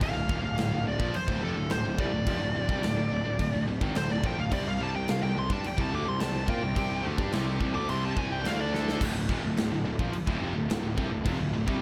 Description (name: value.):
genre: heavy metal.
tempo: 107 BPM.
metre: 4/4.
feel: straight.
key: D minor.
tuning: A4 = 440 Hz.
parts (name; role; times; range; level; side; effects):
high-gain lead guitar; melody; 0.0-9.0 s; A4 to D6; -36 LUFS; equal; distortion.
warm studio string section; sustained chords; 0.0-11.8 s; C3 to D5; -46 LUFS; equal; none.
scooped high-gain guitar; riff; 0.0-11.8 s; D2 to F4; -38 LUFS; equal; distortion.
thick fuzz guitar; riff; 0.0-11.8 s; D2 to F4; -40 LUFS; equal; none.
tight distorted guitar; riff; 0.0-11.8 s; D2 to F4; -38 LUFS; equal; distortion.
fuzz picked electric bass; bass; 0.0-11.8 s; D1 to Bb2; -36 LUFS; equal; overdrive.
big rock drum kit; drums; 0.0-11.8 s; crash cymbal, kick drum, snare drum; -34 LUFS; equal; none.
room: small room ambience.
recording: none.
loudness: -29 LUFS.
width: mono.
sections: 0.0-9.0 A section; 9.0-11.8 B section.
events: lead electric guitar solo 0.0-9.0; drum fill 8.7.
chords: 0.0 Dm; 4.5 C5; 8.4 D5; 9.0 Dm.